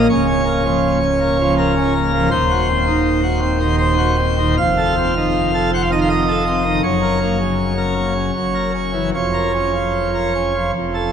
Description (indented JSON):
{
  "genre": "classical, chorale-style piece for pipe organ",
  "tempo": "80 BPM",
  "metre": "3/4",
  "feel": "uneven beats, rubato",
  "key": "Bb minor",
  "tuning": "A4 = 437 Hz",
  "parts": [
    { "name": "pipe organ, plenum", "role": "solo", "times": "0.0-11.1 s", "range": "Db1 to Gb5", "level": "-15 LUFS", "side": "equal", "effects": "none" }
  ],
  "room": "wet cathedral reverb, RT60 4.8 s",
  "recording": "none",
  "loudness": "-15 LUFS",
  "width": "side -8 dB against mid",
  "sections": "0.0-11.1 A section",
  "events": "none",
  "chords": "0.1 Bbm/Db; 2.3 Cdim/Eb; 4.6 F7; 6.8 Gb; 8.3 Gb7; 9.1 Bbm/F"
}